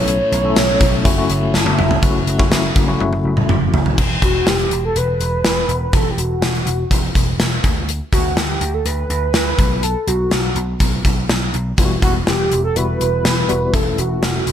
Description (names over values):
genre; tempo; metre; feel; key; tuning
1980s-style pop; 123 BPM; 4/4; straight; unclear; A4 = 440 Hz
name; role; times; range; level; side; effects
warm velvety synth lead; melody; 0.0-14.5 s; F#4 to C#5; -20 LUFS; right 1 dB; chorus
mellow tine electric piano; accompaniment; 0.0-4.0, 11.8-14.5 s; G3 to A5; -22 LUFS; left 5 dB; medium tremolo
thick fuzz guitar; accompaniment; 0.0-2.5 s; F#2 to A3; -28 LUFS; left 1 dB; distortion, wide subtle chorus
vintage slap bass; bass; 0.0-14.5 s; E1 to D2; -20 LUFS; equal; none
gated 80s drum kit; drums; 0.1-14.5 s; crash cymbal, hi-hat, kick drum, snare drum, tambourine, toms; -17 LUFS; equal; none
room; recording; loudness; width
light reverb, small room ambience; none; -14 LUFS; side -10 dB against mid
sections
0.0-2.0 A section; 2.0-4.0 B section; 4.0-14.5 C section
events
tine electric piano fill 1.3-2.0; drum fill 1.5-2.0, 3.0-4.0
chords
0.0 A/B; 1.1 F#m7; 4.0 E5; 7.6 D5; 9.6 B5; 11.8 Emadd9; 13.7 A/E